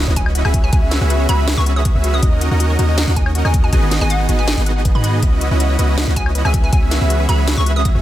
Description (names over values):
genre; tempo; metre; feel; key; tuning
future bass; 160 BPM; 4/4; half-time; unclear; A4 = 438 Hz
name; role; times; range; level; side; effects
ethereal airy pad; sustained chords; 0.0-8.0 s; D#3 to D#5; -28 LUFS; equal; ensemble chorus, built-in reverb, vintage 12-bit sampler grit, sidechain pumping
airy dreamy lead; arpeggios; 0.0-8.0 s; D#5 to E5; -28 LUFS; right 1 dB; chorus, sidechain pumping
dense compressed supersaw; riff; 0.0-8.0 s; B3 to E5; -22 LUFS; right 1 dB; sidechain pumping
long sustained 808-style bass; bass; 0.0-8.0 s; G#1 to G#2; -16 LUFS; equal; sidechain pumping
sub drop; sound effects; 0.0-0.7 s; none; -32 LUFS; equal; none
wide unison pluck; arpeggios; 0.1-8.0 s; F#4 to F#5; -31 LUFS; left 2 dB; sidechain pumping, dub echo
hollow square pluck; melody; 0.2-7.9 s; F#5 to D#6; -25 LUFS; equal; chorus, cassette tape, sidechain pumping, tape echo
electronic kick drum; drums; 0.2-7.9 s; none; -16 LUFS; equal; none
trap drum kit; drums; 0.2-7.9 s; hi-hat, snare drum, woodblock; -22 LUFS; left 1 dB; none
room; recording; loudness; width
little or no reverb; none; -13 LUFS; side -13 dB against mid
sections
0.0-8.0 A section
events
impact 0.0-0.7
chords
0.0 C#m11; 0.5 F#9sus4/C#; 2.2 D#m7; 3.7 G#m7; 5.2 C#m11; 6.5 F#9sus4/C#